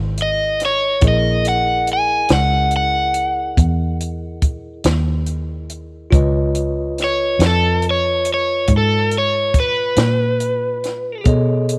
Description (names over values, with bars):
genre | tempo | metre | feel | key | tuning
slow blues | 47 BPM (dotted quarters) | 12/8 | straight | F# mixolydian | A4 = 440 Hz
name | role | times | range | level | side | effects
bell-like tine electric piano | accompaniment | 0.0-11.8 s | E4 to D#5 | -29 LUFS | equal | none
vintage muted fingered electric bass | bass | 0.0-11.8 s | G#1 to B2 | -22 LUFS | equal | none
overdriven semi-hollow guitar | melody | 0.2-11.2 s | A4 to G#5 | -20 LUFS | equal | none
compact cocktail drum kit | drums | 0.2-11.8 s | hi-hat, kick drum, snare drum | -20 LUFS | equal | none
room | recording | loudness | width
small room ambience | none | -17 LUFS | mono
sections
0.0-11.8 A section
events
none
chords
0.0 F#13; 6.1 C#13; 11.3 B13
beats
| 1.02 2.30 3.58 4.85 | 6.13 7.41 8.69 9.97 | 11.26